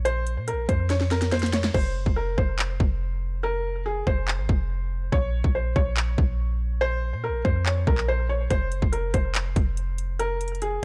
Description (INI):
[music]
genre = hip hop, trap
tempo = 142 BPM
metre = 4/4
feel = half-time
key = Bb minor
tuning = A4 = 441 Hz
[part]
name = clean 808-style bass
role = bass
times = 0.0-10.8 s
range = F1 to Bb2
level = -29 LUFS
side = equal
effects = none
[part]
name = felt-muted upright piano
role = melody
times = 0.1-10.8 s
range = Ab4 to Db5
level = -31 LUFS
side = equal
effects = delay
[part]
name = trap drum kit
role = drums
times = 0.1-10.7 s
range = crash cymbal, handclaps, hi-hat, kick drum, snare drum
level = -27 LUFS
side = equal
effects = none
[sound]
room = digital ambience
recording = dark, warm production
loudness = -25 LUFS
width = mono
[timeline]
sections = 0.0-10.8 A section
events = drum fill 0.9-1.7; hi-hats muted 1.7-8.5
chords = 0.0 Bbmadd9; 1.7 F5; 5.1 Bbmadd9; 8.5 F5